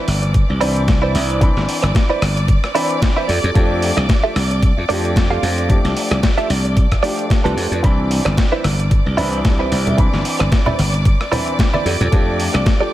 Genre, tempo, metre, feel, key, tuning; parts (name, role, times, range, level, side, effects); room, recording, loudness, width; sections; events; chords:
nu-disco, nu disco; 112 BPM; 4/4; swing 56% on 16ths; C major; A4 = 440 Hz
warm baby grand piano; accompaniment; 0.0-12.9 s; E3 to B5; -24 LUFS; left 1 dB; vintage 12-bit sampler grit, sidechain pumping, tape echo
bright studio violin section; sustained chords; 0.0-12.9 s; D5 to D6; -26 LUFS; right 1 dB; sidechain pumping
direct-recorded clean electric guitar; riff; 0.0-12.9 s; E4 to F5; -21 LUFS; right 3 dB; analog chorus, tape echo
glassy slap bass; bass; 0.1-12.6 s; G1 to F2; -18 LUFS; equal
dusty soul sampler-style drum kit; drums; 0.1-12.8 s; hi-hat, rim click, snare drum; -24 LUFS; left 1 dB; overdrive
electronic kick drum; drums; 0.3-12.8 s; -15 LUFS; equal
congas; percussion; 8.6-12.1 s; -25 LUFS; left 1 dB
studio reverb; -14 LUFS; side -14 dB against mid
0.0-12.9 A section
0.0 Cmaj9; 3.3 F69; 7.8 Cmaj9; 11.9 F69